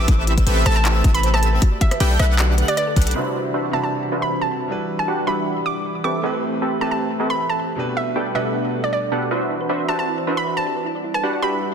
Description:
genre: future bass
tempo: 156 BPM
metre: 4/4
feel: swing 53% on 16ths, half-time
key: unclear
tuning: A4 = 440 Hz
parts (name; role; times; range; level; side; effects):
- hollow square pluck; melody; 0.0-11.6 s; D5 to D6; -24 LUFS; right 2 dB; chorus, sidechain pumping, ping-pong delay
- airy breathy pad; sustained chords; 0.0-11.7 s; B2 to B5; -29 LUFS; left 1 dB; chorus, sidechain pumping
- airy dreamy lead; arpeggios; 0.0-3.1 s; E6 to G6; -31 LUFS; equal; chorus, sidechain pumping, tape echo
- thumb-piano-like synth pluck; arpeggios; 0.0-3.1, 9.3-11.7 s; E4 to D5; -31 LUFS; right 3 dB; chorus, sidechain pumping, tape echo
- supersaw stab; riff; 0.0-11.7 s; B2 to G5; -24 LUFS; right 1 dB; sidechain pumping, low-pass filter, tape echo
- warm 808-style bass; bass; 0.0-3.1 s; A1 to B1; -18 LUFS; equal; sidechain pumping
- electronic kick drum; drums; 0.1-3.0 s; none; -16 LUFS; equal; none
- trap drum kit; drums; 0.1-3.2 s; handclaps, hi-hat, rim click; -25 LUFS; left 1 dB; low-pass filter on hats, low-pass filter on snare
- clear concert grand piano; accompaniment; 3.1-9.3 s; B2 to B5; -28 LUFS; equal; sidechain pumping, tape echo
room: light reverb, digital ambience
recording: dense, heavily limited modern master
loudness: -18 LUFS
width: side -7 dB against mid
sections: 0.0-3.2 A section; 3.2-11.7 B section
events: drop 0.0-3.2; drum fill 3.0; filter sweep on analog synth pad 3.2-11.7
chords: 0.0 Am9; 1.6 Gmaj9/B; 3.2 Cmaj9#11; 4.7 Em9; 6.0 Am9; 7.8 Gmaj9/B; 9.3 Cmaj9#11; 10.8 Em9

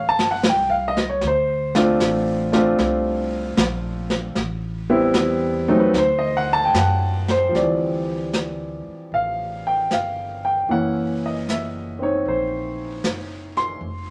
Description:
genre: jazz ballad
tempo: 76 BPM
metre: 4/4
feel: swing 68% on 8ths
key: D minor from 7.5 s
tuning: A4 = 441 Hz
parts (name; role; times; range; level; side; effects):
- clear concert grand piano; accompaniment; 0.0-14.1 s; E3 to B#5; -22 LUFS; equal; none
- upright bass; bass; 0.0-14.1 s; F1 to F#2; -31 LUFS; equal; none
- jazz brush drum kit; drums; 0.2-14.1 s; brushed snare drum, hi-hat, snare drum; -25 LUFS; equal; none
room: moderate studio reverb, RT60 0.6 s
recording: none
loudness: -21 LUFS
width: mono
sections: 0.0-7.5 A section; 7.5-14.1 B section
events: none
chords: 0.0 Am7b13/G; 1.2 Dm7; 4.4 Am7; 5.9 D; 7.5 Dm11; 10.7 F#7#11

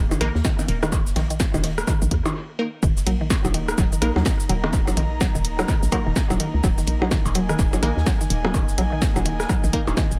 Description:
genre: minimal techno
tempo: 126 BPM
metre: 4/4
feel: swing 60% on 16ths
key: unclear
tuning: A4 = 440 Hz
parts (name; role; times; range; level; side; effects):
- hollow knocking FM bass; bass; 0.0-10.2 s; Eb1 to Eb2; -27 LUFS; equal; tube saturation, sidechain pumping
- swarming drone; texture; 0.1-2.4 s; Bb3; -45 LUFS; equal; none
- mallet-like synth pluck; riff; 0.1-10.0 s; Eb3 to Bb3; -30 LUFS; equal; chorus, phaser, sidechain pumping, tape echo
- open jazz drum kit; drums; 0.1-10.2 s; ride cymbal, snare drum; -43 LUFS; equal; none
- punchy analog drum machine; drums; 0.1-10.2 s; cabasa, hi-hat, snare drum; -32 LUFS; equal; dub echo
- electronic percussion blips and rim click; percussion; 0.1-10.0 s; none; -31 LUFS; equal; tape echo
- wavetable chord stab; stabs; 0.2-9.8 s; Bb3 to Bb4; -32 LUFS; equal; dub echo
- electronic kick drum; drums; 0.4-10.1 s; none; -25 LUFS; equal; none
- airy breathy pad; texture; 3.2-10.2 s; Bb3 to Bb5; -34 LUFS; equal; chorus, sidechain pumping
room: light reverb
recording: echo-heavy mix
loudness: -22 LUFS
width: mono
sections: 0.0-2.8 A section; 2.8-10.2 B section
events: break 2.4-2.8; drop 2.8-10.2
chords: 0.0 Eb5

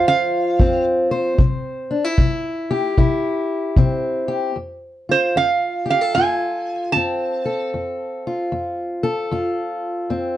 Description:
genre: acoustic country blues, solo or duo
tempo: 76 BPM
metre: 4/4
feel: swing 64% on 8ths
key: F major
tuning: A4 = 440 Hz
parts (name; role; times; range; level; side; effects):
- metal-body resonator slide guitar; melody; 0.0-7.7 s; C5 to A5; -19 LUFS; right 4 dB; none
- fingerpicked steel-string acoustic guitar; accompaniment; 0.0-10.4 s; F2 to C5; -20 LUFS; left 2 dB; none
- kick drum; drums; 0.6-4.0 s; none; -16 LUFS; equal; none
room: light reverb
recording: dark, warm production, nothing above 10.8 kHz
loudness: -18 LUFS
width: side -13 dB against mid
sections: 0.0-4.6 A section; 4.6-10.4 A section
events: resonator guitar played with a steel bar solo 0.0-4.6, 4.6-10.4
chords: 0.0 F5; 1.4 C; 4.6 F

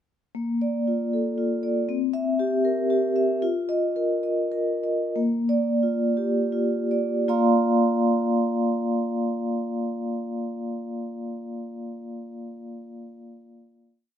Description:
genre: classical, contemporary piece for solo vibraphone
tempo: 78-120 BPM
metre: 3/4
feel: rubato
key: Bb major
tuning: A4 = 440 Hz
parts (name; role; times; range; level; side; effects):
- vibraphone with soft mallets; solo; 0.3-14.0 s; Bb3 to C6; -23 LUFS; equal; none
room: light reverb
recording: none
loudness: -22 LUFS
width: side -9 dB against mid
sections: 0.4-7.3 A section; 7.3-11.7 final chord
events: slowing down 2.6-7.3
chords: 0.4 Bbmaj7; 1.9 C7; 3.4 F7sus4; 5.2 Bb6; 7.3 Bbadd9

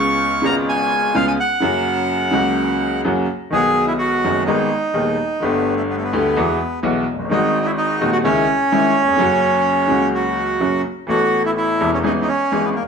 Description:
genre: tango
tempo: 127 BPM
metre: 4/4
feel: rubato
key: B major from 3.5 s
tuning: A4 = 439 Hz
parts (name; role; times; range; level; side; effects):
- bandoneon; melody; 0.0-12.8 s; A3 to C#6; -18 LUFS; right 1 dB; none
- clear upright piano; accompaniment; 0.0-12.9 s; D#1 to A4; -18 LUFS; left 1 dB; none
room: wet stone room reverb, RT60 1.0 s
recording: band playing live in one room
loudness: -15 LUFS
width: side -6 dB against mid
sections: 0.0-3.5 A section; 3.5-12.9 B section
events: none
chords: 0.0 C#7; 1.6 F#; 3.5 B6; 4.5 G#m; 5.4 Gadd9; 6.4 Eadd9; 7.3 G#7; 8.2 C#madd9; 9.2 F#; 11.1 Asus2; 12.0 E6/G#

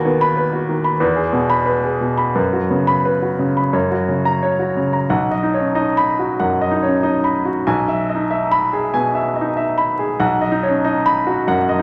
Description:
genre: classical, virtuoso piano study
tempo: 86-95 BPM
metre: 4/4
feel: rubato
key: B major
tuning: A4 = 439 Hz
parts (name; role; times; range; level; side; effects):
- warm baby grand piano; solo; 0.0-11.8 s; B1 to B5; -18 LUFS; equal; none
room: wet recital hall reverb, RT60 1.4 s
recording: vinyl crackle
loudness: -18 LUFS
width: mono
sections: 0.0-5.1 A section; 5.1-11.8 B section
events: none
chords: 0.0 B/D#; 1.0 E; 2.4 F#sus4; 3.7 F#; 5.1 B; 7.7 E/B; 10.2 B

